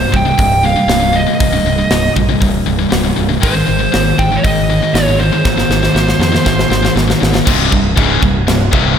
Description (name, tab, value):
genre	heavy metal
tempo	119 BPM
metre	4/4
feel	straight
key	C phrygian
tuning	A4 = 441 Hz
part	high-gain lead guitar	melody	0.0-6.9 s	C5 to G5	-16 LUFS	right 2 dB	distortion
part	high-gain distorted guitar	riff	0.0-9.0 s	C2 to Ab3	-16 LUFS	left 9 dB	distortion
part	sludgy distorted guitar	riff	0.0-9.0 s	C2 to Ab3	-19 LUFS	right 9 dB	overdrive
part	growling fingered electric bass	bass	0.0-9.0 s	C1 to F2	-18 LUFS	right 1 dB	overdrive
part	tight metal drum kit	drums	0.1-8.8 s	crash cymbal, hi-hat, kick drum, snare drum	-16 LUFS	equal	none
room	moderate scoring stage reverb, RT60 2.0 s, small room reverb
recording	big arena sound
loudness	-10 LUFS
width	side -8 dB against mid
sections	0.0-7.5 A section; 7.5-9.0 B section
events	drum fill 5.5-7.5; half time 7.5-9.0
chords	0.0 Cm; 3.4 Ab; 7.5 C5